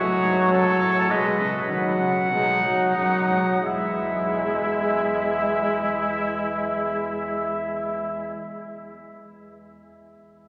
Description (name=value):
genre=classical, imitative canzona for brass ensemble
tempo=87-107 BPM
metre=4/4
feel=straight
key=E major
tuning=A4 = 440 Hz
part: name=mellow trumpet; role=melody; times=0.0-8.4 s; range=C#5 to F#5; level=-28 LUFS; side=equal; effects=none
part: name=warm trumpet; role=second line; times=0.0-8.5 s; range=D#4 to B4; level=-31 LUFS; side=equal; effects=none
part: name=warm trombone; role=accompaniment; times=0.0-8.4 s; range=F#3 to G#3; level=-27 LUFS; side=equal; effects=none
part: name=mellow tuba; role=bass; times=0.0-8.4 s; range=E2 to D#3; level=-38 LUFS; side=equal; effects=none
room=wet cathedral reverb, RT60 6.5 s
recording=none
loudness=-23 LUFS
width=mono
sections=0.0-3.6 A section; 3.6-9.1 B section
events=slowing down 0.0-3.6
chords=0.0 F#m; 1.1 B; 3.6 E